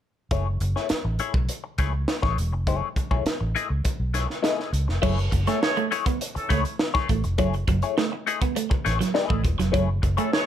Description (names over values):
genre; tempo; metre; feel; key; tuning
funk; 102 BPM; 4/4; straight; F# dorian; A4 = 440 Hz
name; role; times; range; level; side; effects
clean electric guitar; accompaniment; 0.3-10.4 s; A3 to D#5; -28 LUFS; left 8 dB; wah
vintage muted fingered electric bass; bass; 0.3-10.2 s; E1 to C#2; -25 LUFS; equal; none
crisp fusion drum kit; drums; 0.3-10.5 s; crash cymbal, hi-hat, kick drum, snare drum; -26 LUFS; equal; none
electric guitar at the edge of break-up; riff; 5.0-10.3 s; F#3 to B3; -28 LUFS; right 8 dB; none
clear horn section; second line; 5.5-6.6, 10.2-10.5 s; E3 to C#5; -27 LUFS; right 2 dB; none
room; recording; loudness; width
light reverb; dark, warm production; -22 LUFS; side -10 dB against mid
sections
0.3-5.0 A section; 5.0-10.5 B section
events
none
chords
0.3 F#m9 (rootless); 5.0 F#m9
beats
| 0.31 0.90 1.49 2.08 | 2.67 3.26 3.85 4.44 | 5.03 5.62 6.21 6.80 | 7.39 7.97 8.56 9.15 | 9.74 10.32